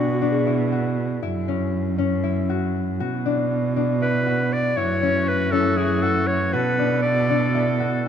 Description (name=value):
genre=contemporary instrumental, chamber music in an uneven meter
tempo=237 BPM (eighths)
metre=7/8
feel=straight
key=unclear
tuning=A4 = 440 Hz
part: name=breathy clarinet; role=melody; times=0.0-0.7, 4.0-7.8 s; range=F#4 to D5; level=-24 LUFS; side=equal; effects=none
part: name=concert harp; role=arpeggios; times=0.0-8.1 s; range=C#4 to F#4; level=-24 LUFS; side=left 7 dB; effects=none
part: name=dark cello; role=bass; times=0.0-8.1 s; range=F#2 to B2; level=-24 LUFS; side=right 5 dB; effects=none
part: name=celesta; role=texture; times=0.0-1.7, 5.5-8.1 s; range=D4 to G#4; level=-30 LUFS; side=left 3 dB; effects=none
part: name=clear woodwind section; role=sustained chords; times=4.8-8.1 s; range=D3 to A4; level=-29 LUFS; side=right 1 dB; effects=none
room=moderate concert hall reverb, RT60 2.0 s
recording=close, detailed microphones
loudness=-19 LUFS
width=side -8 dB against mid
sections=0.0-8.1 A section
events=none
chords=0.0 Bm; 1.2 F#5; 3.0 Bm; 4.8 F#m7; 6.5 Bm7